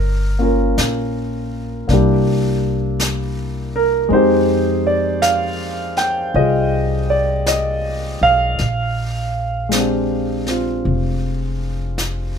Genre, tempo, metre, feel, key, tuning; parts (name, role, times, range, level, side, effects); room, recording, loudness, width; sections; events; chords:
jazz ballad; 53 BPM; 4/4; swing 66% on 8ths; A4 = 438 Hz
warm grand piano; accompaniment; 0.0-12.4 s; Ab3 to G5; -18 LUFS; right 1 dB
upright bass; bass; 0.0-12.4 s; F1 to F2; -21 LUFS; left 1 dB
jazz brush drum kit; drums; 0.8-12.4 s; brushed snare drum, hi-hat, snare drum; -26 LUFS; left 1 dB
light reverb; minimal, uncompressed stereo recording; -16 LUFS; side -7 dB against mid
0.0-12.4 A section
0.0 Gm7b5; 1.9 C7; 4.1 Fm9; 8.6 Bb13